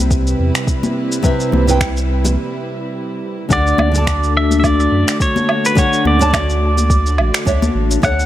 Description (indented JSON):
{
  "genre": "sunset chillout",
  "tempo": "106 BPM",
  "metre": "4/4",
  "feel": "swing 56% on 16ths",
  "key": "unclear",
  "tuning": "A4 = 439 Hz",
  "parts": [
    { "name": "nylon-string guitar", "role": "accompaniment", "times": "0.0-8.3 s", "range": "C3 to A5", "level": "-19 LUFS", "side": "moving between left 6 dB and right 4 dB", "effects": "auto-pan, ping-pong delay" },
    { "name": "dark studio string section", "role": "sustained chords", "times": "0.0-8.3 s", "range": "C3 to B4", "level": "-23 LUFS", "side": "right 1 dB", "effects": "none" },
    { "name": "warm sub bass", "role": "bass", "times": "0.0-8.3 s", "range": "A1 to F#2", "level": "-16 LUFS", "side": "equal", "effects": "tube saturation" },
    { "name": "electronic kick drum", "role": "drums", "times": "0.1-8.2 s", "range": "none", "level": "-18 LUFS", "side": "equal", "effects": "overdrive" },
    { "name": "electronic shaker, finger snaps and woodblock", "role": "drums", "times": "0.1-8.3 s", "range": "none", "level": "-22 LUFS", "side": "right 2 dB", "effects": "overdrive" },
    { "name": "congas", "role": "percussion", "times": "0.8-7.7 s", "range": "none", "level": "-23 LUFS", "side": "left 3 dB", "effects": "none" },
    { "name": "pedal steel guitar", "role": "melody", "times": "3.5-8.3 s", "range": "B4 to F#5", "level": "-18 LUFS", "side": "right 1 dB", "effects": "vintage 12-bit sampler grit, ping-pong delay" }
  ],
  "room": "light reverb, studio ambience",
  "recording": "none",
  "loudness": "-13 LUFS",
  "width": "side -13 dB against mid",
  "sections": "0.0-3.5 A section; 3.5-8.3 B section",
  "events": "break 2.4-3.5",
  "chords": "0.0 Cmaj7; 3.5 Dmaj7"
}